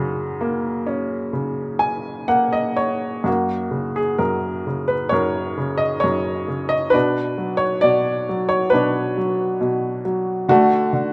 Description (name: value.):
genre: classical, lyrical solo piano.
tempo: 61-70 BPM.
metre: 4/4.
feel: rubato.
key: F# major.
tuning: A4 = 442 Hz.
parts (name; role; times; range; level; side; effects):
clear upright piano; solo; 0.0-11.1 s; F#2 to G#5; -21 LUFS; equal; none.
room: moderate plate reverb, RT60 2.8 s.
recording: none.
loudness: -21 LUFS.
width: mono.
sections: 0.0-3.3 A section; 3.3-11.1 B section.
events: upright piano fill 1.3-3.3.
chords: 0.0 F#; 6.9 Bm; 10.5 D.